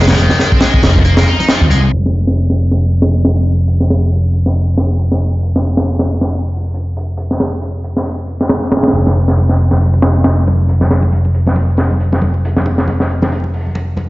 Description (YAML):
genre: breakbeat, breaks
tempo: 137 BPM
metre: 4/4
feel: swing 58% on 16ths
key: F minor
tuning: A4 = 440 Hz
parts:
  - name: heavy high-gain guitar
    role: riff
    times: 0.0-1.8 s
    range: Eb3 to Eb4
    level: -17 LUFS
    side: left 1 dB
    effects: distortion, tube saturation, low-pass filter, ping-pong delay
  - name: modern bright picked electric bass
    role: bass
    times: 0.0-14.1 s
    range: F1 to Eb2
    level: -13 LUFS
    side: equal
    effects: low-pass filter
  - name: crunchy breakbeat drum kit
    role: drums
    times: 0.0-14.1 s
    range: hi-hat, kick drum, snare drum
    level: -15 LUFS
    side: equal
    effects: low-pass filter on kick, low-pass filter on hats, low-pass filter on snare, low-pass filter on room
  - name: congas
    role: percussion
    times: 0.3-1.8, 9.1-14.1 s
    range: none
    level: -22 LUFS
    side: equal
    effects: none
room: light reverb, small room ambience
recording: played on a big sound system in a bare room, large studio reverb, vinyl crackle, low-pass filter, nothing above 7.7 kHz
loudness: -11 LUFS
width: side -19 dB against mid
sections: 0.0-1.9 A section; 1.9-14.1 B section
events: kick drops out 1.1-1.9; filter sweep 1.9-14.1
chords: 0.0 Fm; 1.9 N.C.